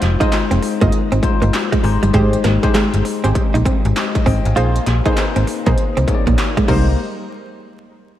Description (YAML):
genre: R&B, new jack swing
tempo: 99 BPM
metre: 4/4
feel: swing 63% on 16ths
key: unclear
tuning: A4 = 443 Hz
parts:
  - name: bell-like tine electric piano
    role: accompaniment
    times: 0.0-7.0 s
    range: Ab3 to Ab5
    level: -22 LUFS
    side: left 7 dB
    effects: wide subtle chorus, slapback echo
  - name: direct-recorded clean electric guitar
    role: riff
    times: 0.0-6.9 s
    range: G3 to F4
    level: -22 LUFS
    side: right 4 dB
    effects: wide subtle chorus, slapback echo
  - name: slap-like FM bass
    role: bass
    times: 0.0-7.0 s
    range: F1 to C2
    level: -16 LUFS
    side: equal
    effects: none
  - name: industrial drum kit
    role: drums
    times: 0.0-6.9 s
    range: crash cymbal, handclaps, hi-hat, kick drum, snare drum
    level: -19 LUFS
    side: equal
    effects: distortion, overdrive
  - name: funky polysynth comp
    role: stabs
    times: 0.2-6.9 s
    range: Eb4 to Eb5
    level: -25 LUFS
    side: right 2 dB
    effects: chorus, analog delay
room: moderate lush hall reverb, RT60 2.5 s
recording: big arena sound, vinyl crackle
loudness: -14 LUFS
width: side -12 dB against mid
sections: 0.0-7.0 A section; 7.0-8.2 B section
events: none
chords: 0.0 Fm7; 1.8 Abmaj7; 4.6 Bb9sus4; 6.7 Cm7; 7.0 N.C.